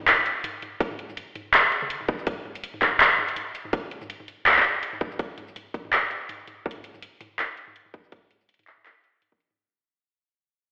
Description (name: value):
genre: drum and bass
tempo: 164 BPM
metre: 4/4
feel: swing 56% on 16ths, half-time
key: none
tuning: none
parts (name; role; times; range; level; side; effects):
- drum and bass drum kit; drums; 0.1-9.6 s; handclaps, hi-hat, shaker, toms; -23 LUFS; equal; overdrive
- electronic kick drum; drums; 0.8-9.4 s; none; -30 LUFS; equal; overdrive
room: wet echo chamber reverb, RT60 1.7 s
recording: played on a big sound system in a bare room, stone room reverb, telephone sound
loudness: -24 LUFS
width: mono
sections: 0.0-9.6 A section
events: drop 0.0-9.6; fade-out 3.7-9.6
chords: none